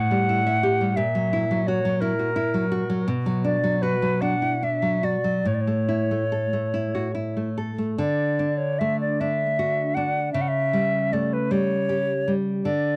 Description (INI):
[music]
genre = romantic duo for flute and classical guitar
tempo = 46-59 BPM (dotted quarters)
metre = 6/8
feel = rubato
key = unclear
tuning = A4 = 440 Hz
[part]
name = silver concert flute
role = melody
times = 0.0-13.0 s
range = A#4 to F#5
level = -27 LUFS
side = equal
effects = none
[part]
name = nylon-string guitar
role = accompaniment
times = 0.0-13.0 s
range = A2 to E5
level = -26 LUFS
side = equal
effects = none
[sound]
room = light reverb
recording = dry, close 1970s-style studio recording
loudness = -24 LUFS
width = mono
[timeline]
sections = 0.0-8.0 A section; 8.0-13.0 B section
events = none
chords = 0.0 A5; 1.0 F#7/A#; 3.1 Bm; 5.5 A; 8.0 D; 10.3 A7/C#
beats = | 0.98 2.02 | 3.07 4.22 | 5.46 6.74 | 7.98 9.20 | 10.34 11.51 | 12.65